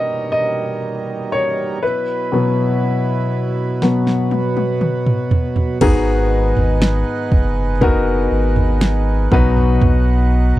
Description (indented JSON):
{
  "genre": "pop ballad",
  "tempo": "60 BPM",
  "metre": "4/4",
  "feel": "straight",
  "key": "unclear",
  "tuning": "A4 = 440 Hz",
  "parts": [
    { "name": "warm grand piano", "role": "accompaniment", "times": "0.0-10.6 s", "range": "G#2 to D#5", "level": "-18 LUFS", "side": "left 2 dB", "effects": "none" },
    { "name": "pedal harmonium", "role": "sustained chords", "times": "0.0-10.6 s", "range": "B2 to F#5", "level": "-24 LUFS", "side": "right 5 dB", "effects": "none" },
    { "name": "pop drum kit", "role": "drums", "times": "3.8-10.6 s", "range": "crash cymbal, kick drum, snare drum, toms", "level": "-17 LUFS", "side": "right 1 dB", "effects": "none" },
    { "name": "warm sub bass", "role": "bass", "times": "5.8-10.6 s", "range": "F#1 to B1", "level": "-17 LUFS", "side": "equal", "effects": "none" }
  ],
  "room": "little or no reverb",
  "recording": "dry, close 1970s-style studio recording",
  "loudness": "-14 LUFS",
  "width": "side -15 dB against mid",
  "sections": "0.0-5.8 A section; 5.8-10.6 B section",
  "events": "grand piano solo 0.0-5.8; drum fill 3.8-5.8",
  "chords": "0.0 D#/B; 1.8 Esus2/B; 5.8 G#m7; 9.3 B"
}